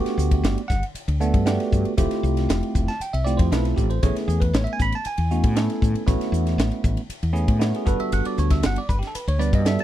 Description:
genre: electric jazz fusion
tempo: 117 BPM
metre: 4/4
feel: straight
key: unclear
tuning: A4 = 437 Hz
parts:
  - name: bell-like tine electric piano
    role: accompaniment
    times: 0.0-9.8 s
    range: G3 to B5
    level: -25 LUFS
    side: right 3 dB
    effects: phaser
  - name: woody fretless electric bass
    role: bass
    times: 0.0-9.8 s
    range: F1 to A2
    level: -22 LUFS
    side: left 1 dB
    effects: none
  - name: crisp fusion drum kit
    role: drums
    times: 0.1-9.8 s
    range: hi-hat, kick drum, ride cymbal, snare drum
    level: -24 LUFS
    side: equal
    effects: none
room: little or no reverb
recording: none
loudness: -20 LUFS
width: side -12 dB against mid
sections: 0.0-9.8 A section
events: none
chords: 0.0 Gmaj9; 2.0 Fmaj9; 4.0 Amaj9; 7.9 Gmaj9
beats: 0.44 0.95 1.47 | 1.98 2.49 3.00 3.52 | 4.03 4.54 5.05 5.57 | 6.08 6.59 7.10 7.61 | 8.13 8.64 9.15 9.66

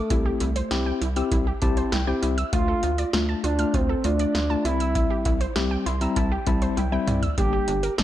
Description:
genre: synth-pop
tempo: 99 BPM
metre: 4/4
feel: straight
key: unclear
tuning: A4 = 440 Hz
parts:
  - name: expressive synth lead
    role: melody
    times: 0.0-7.9 s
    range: A3 to G4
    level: -27 LUFS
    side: right 2 dB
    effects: chorus, slapback echo
  - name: wide unison pluck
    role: arpeggios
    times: 0.0-8.0 s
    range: D4 to F6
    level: -32 LUFS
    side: right 4 dB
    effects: slapback echo
  - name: tine electric piano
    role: accompaniment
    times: 0.1-8.0 s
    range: G3 to C6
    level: -27 LUFS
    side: left 4 dB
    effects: medium stereo tremolo
  - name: rubbery square bass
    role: bass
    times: 0.1-8.0 s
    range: G1 to D2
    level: -26 LUFS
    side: equal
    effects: none
  - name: electro analog drum machine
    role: drums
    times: 0.1-8.0 s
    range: hi-hat, kick drum, snare drum, toms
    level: -27 LUFS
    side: equal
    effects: none
room: light reverb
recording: none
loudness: -21 LUFS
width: side -12 dB against mid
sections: 0.0-8.0 A section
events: tine electric piano fill 1.3-2.5, 5.6-7.4; drum fill 6.8-7.4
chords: 0.1 C; 2.5 Dm; 4.7 C; 7.4 Gm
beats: | 0.10 0.71 1.32 1.92 | 2.53 3.13 3.74 4.35 | 4.95 5.56 6.17 6.77 | 7.38 7.98

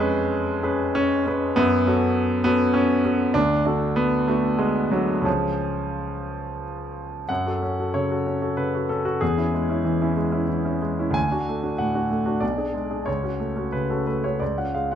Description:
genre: classical, romantic character piece for solo piano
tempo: 85-102 BPM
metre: 3/4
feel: rubato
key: F# minor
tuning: A4 = 441 Hz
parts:
  - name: clear concert grand piano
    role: solo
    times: 0.0-15.0 s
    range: B1 to G#5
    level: -21 LUFS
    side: equal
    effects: none
room: light reverb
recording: close, detailed microphones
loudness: -21 LUFS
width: side -9 dB against mid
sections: 0.0-7.3 A section; 7.3-15.0 B section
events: none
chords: 0.0 C#7/E#; 1.6 F#m; 3.4 D; 5.3 C#; 7.3 F#m; 9.2 C#m/E; 11.2 D; 12.4 G#dim/B; 13.1 F#m/C#; 14.4 C#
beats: 0.31 0.96 | 1.57 2.16 2.75 | 3.35 3.97 4.59 | 5.26 5.96 6.63 | 7.29 7.95 8.58 | 9.21 9.85 10.48 | 11.15 11.79 12.42 | 13.07 13.74 14.41

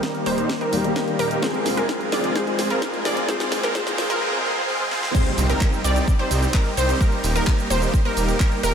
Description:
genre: EDM, festival progressive house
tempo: 129 BPM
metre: 4/4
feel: straight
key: C minor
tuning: A4 = 440 Hz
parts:
  - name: dark grand piano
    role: accompaniment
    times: 0.0-5.2 s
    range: Eb3 to Ab4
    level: -28 LUFS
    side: left 3 dB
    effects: vintage 12-bit sampler grit, sidechain pumping, analog delay
  - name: wide unison pluck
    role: arpeggios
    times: 0.0-8.7 s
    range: Bb4 to D5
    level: -26 LUFS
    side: equal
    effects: sidechain pumping, analog delay
  - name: supersaw chords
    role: riff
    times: 0.0-8.7 s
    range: G3 to D5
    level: -24 LUFS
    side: right 1 dB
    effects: sidechain pumping, low-pass filter, analog delay
  - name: electronic kick drum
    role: drums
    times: 0.0-8.5 s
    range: none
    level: -20 LUFS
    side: equal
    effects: high-pass filter on kick, high-pass filter on room
  - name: house drum kit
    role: drums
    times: 0.0-8.7 s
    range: cabasa, crash cymbal, handclaps, hi-hat, snare drum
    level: -28 LUFS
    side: equal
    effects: none
  - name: riser and impact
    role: sound effects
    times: 0.6-7.0 s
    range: none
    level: -35 LUFS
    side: right 1 dB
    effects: none
  - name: detuned saw bass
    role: bass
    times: 0.3-8.7 s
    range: Eb1 to C2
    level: -25 LUFS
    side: equal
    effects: tube saturation, sidechain pumping
room: wet huge ambient reverb, RT60 5.4 s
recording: dreamy mix soaked in reverb, high-pass filter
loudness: -19 LUFS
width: side -7 dB against mid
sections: 0.0-5.1 A section; 5.1-8.7 B section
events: build-up 0.0-5.1; drum fill 0.0-4.2, 4.9; filter sweep on supersaw synth 0.0-5.1; filter sweep on synth pluck 0.0-5.1; filter sweep 0.0-5.1; drop 5.1-8.7; impact 5.1-7.0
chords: 0.0 Eb; 1.4 Fm; 3.3 Ab; 5.1 Cm; 7.0 Eb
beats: 0.03 0.49 0.96 | 1.43 1.89 2.36 2.82 | 3.29 3.75 4.22 4.68 | 5.15 5.61 6.08 6.54 | 7.01 7.47 7.94 8.40

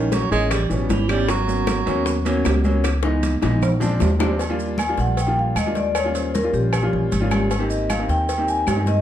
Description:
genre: Afro-Cuban jazz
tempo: 154 BPM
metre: 4/4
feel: straight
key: Eb major from 4.4 s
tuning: A4 = 441 Hz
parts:
  - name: warm baritone saxophone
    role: second line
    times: 0.0-2.5 s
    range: B2 to G#3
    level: -23 LUFS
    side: right 5 dB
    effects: none
  - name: clear concert grand piano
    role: accompaniment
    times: 0.0-9.0 s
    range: E3 to G4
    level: -24 LUFS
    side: equal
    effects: none
  - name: upright bass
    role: bass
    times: 0.0-9.0 s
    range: G#1 to G2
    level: -23 LUFS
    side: equal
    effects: none
  - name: bongos and cowbell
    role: percussion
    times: 0.1-9.0 s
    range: none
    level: -31 LUFS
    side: left 7 dB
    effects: none
  - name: congas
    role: percussion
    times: 0.1-9.0 s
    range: none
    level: -27 LUFS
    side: equal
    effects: none
  - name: maracas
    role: percussion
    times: 0.1-9.0 s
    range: none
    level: -39 LUFS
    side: right 7 dB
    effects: none
  - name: timbales and agogo bells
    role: percussion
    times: 0.1-8.9 s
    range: none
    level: -29 LUFS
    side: right 5 dB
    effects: none
  - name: claves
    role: percussion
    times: 0.5-8.9 s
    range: none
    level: -35 LUFS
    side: left 7 dB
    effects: none
  - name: vibraphone with medium mallets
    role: melody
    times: 4.8-9.0 s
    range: G4 to Ab5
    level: -23 LUFS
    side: left 2 dB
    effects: none
room: moderate large studio reverb, RT60 0.8 s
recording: dark, warm production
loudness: -18 LUFS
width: side -11 dB against mid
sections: 0.0-4.4 A section; 4.4-9.0 A section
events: baritone saxophone solo 0.0-4.4; drum fill 2.8-4.4; vibraphone solo 4.4-9.0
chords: 0.0 A#m7b5; 0.5 A9; 1.3 G#m11; 2.8 C#m7; 3.6 A#7; 4.4 Ebmaj7; 6.0 Eb7; 7.5 Abmaj7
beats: 0.13 0.52 0.91 | 1.29 1.68 2.07 2.46 | 2.85 3.23 3.62 4.01 | 4.40 4.79 5.17 5.56 | 5.95 6.34 6.73 7.12 | 7.50 7.89 8.28 8.67

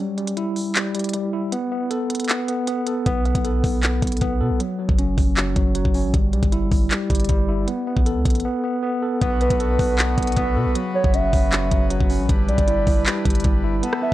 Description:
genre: hip hop, trap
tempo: 156 BPM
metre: 4/4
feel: half-time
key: B minor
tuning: A4 = 441 Hz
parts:
  - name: tine electric piano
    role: arpeggios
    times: 0.0-14.1 s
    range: F#3 to A4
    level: -23 LUFS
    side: equal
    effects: medium stereo tremolo, tape echo
  - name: trap drum kit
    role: drums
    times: 0.2-14.0 s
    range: handclaps, hi-hat, kick drum, rim click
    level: -21 LUFS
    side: equal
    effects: vintage 12-bit sampler grit
  - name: long sustained 808-style bass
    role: bass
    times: 3.1-13.8 s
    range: F#1 to B2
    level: -24 LUFS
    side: equal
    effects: none
  - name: accordion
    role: sustained chords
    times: 9.2-14.1 s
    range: C#3 to B4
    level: -30 LUFS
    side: left 2 dB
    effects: stereo widening
  - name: gliding portamento lead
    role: second line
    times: 9.4-14.1 s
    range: B4 to E5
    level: -24 LUFS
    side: right 2 dB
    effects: chorus, tape echo
room: digital ambience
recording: dry, gritty hardware recording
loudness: -18 LUFS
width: side -15 dB against mid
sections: 0.0-9.2 A section; 9.2-14.1 B section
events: break 0.0-3.1, 8.4-9.2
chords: 0.0 Em/G; 1.5 Asus2/B; 4.6 F#5; 6.1 G5; 7.7 Asus2; 9.2 Bm7; 10.8 F#sus4; 12.3 G6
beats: 0.37 0.75 1.14 | 1.52 1.91 2.29 2.68 | 3.06 3.45 3.83 4.22 | 4.60 4.99 5.37 5.75 | 6.14 6.52 6.91 7.29 | 7.68 8.06 8.45 8.83 | 9.22 9.60 9.98 10.37 | 10.75 11.14 11.52 11.91 | 12.29 12.68 13.06 13.45 | 13.83

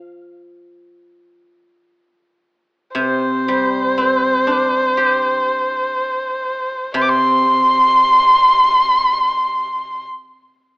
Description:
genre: chinese traditional, Chinese chamber ensemble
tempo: 60 BPM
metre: 4/4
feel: rubato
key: unclear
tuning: A4 = 440 Hz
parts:
  - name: guzheng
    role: accompaniment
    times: 0.0-10.0 s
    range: C3 to G4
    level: -20 LUFS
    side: equal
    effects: none
  - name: dark erhu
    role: melody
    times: 2.9-10.1 s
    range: C5 to D6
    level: -14 LUFS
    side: equal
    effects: none
room: moderate recital hall reverb, RT60 1.5 s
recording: AM radio sound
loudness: -13 LUFS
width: side -26 dB against mid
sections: 0.0-10.8 A section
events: none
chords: none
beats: 0.94 1.95 | 2.96 3.96 4.96 5.96 | 6.97 7.98 9.01

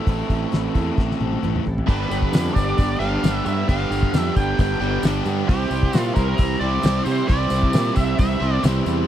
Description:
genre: classic rock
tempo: 133 BPM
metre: 4/4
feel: straight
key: unclear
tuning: A4 = 442 Hz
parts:
  - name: picked twelve-string acoustic guitar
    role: accompaniment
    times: 0.0-9.1 s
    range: G2 to A4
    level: -31 LUFS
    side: left 4 dB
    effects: analog chorus
  - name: overdriven electric guitar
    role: riff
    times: 0.0-9.1 s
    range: G2 to C5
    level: -29 LUFS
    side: left 14 dB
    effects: none
  - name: overdriven electric guitar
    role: riff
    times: 0.0-9.1 s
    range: G2 to C5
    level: -27 LUFS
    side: right 10 dB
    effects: none
  - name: fuzz fingered electric bass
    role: bass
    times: 0.1-9.0 s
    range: G1 to C3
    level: -24 LUFS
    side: equal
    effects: overdrive
  - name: damped 70s drum kit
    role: drums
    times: 0.1-8.8 s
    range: hi-hat, kick drum, snare drum, toms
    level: -19 LUFS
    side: equal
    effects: none
  - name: octave-fuzz lead guitar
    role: melody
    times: 1.9-8.6 s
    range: G4 to G5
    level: -27 LUFS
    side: right 2 dB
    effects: wah, distortion, tape echo
  - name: biting overdriven guitar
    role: riff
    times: 1.9-9.1 s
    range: G2 to C4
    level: -28 LUFS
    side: right 1 dB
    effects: none
  - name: tambourine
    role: percussion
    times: 1.9-9.0 s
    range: none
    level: -43 LUFS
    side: right 3 dB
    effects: none
room: studio ambience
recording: dry, close 1970s-style studio recording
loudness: -18 LUFS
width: side -11 dB against mid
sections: 0.0-1.9 A section; 1.9-9.1 B section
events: drum fill 1.0-1.9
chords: 0.0 Am; 1.9 G; 5.5 C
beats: | 0.07 0.52 0.97 1.43 | 1.88 2.33 2.78 3.23 | 3.69 4.14 4.59 5.04 | 5.49 5.94 6.39 6.84 | 7.29 7.74 8.19 8.64

